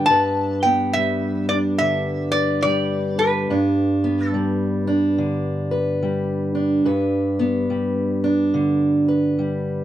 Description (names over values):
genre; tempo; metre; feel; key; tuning
acoustic country blues, solo or duo; 71 BPM; 4/4; swing 63% on 8ths; G major; A4 = 439 Hz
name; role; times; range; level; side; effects
metal-body resonator slide guitar; melody; 0.0-4.8 s; B4 to A5; -20 LUFS; left 1 dB; plate reverb
fingerpicked steel-string acoustic guitar; accompaniment; 0.0-9.8 s; G2 to B4; -19 LUFS; equal; none
room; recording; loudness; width
wet booth ambience, RT60 0.2 s; none; -18 LUFS; side -12 dB against mid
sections
0.0-9.8 A section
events
none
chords
0.0 G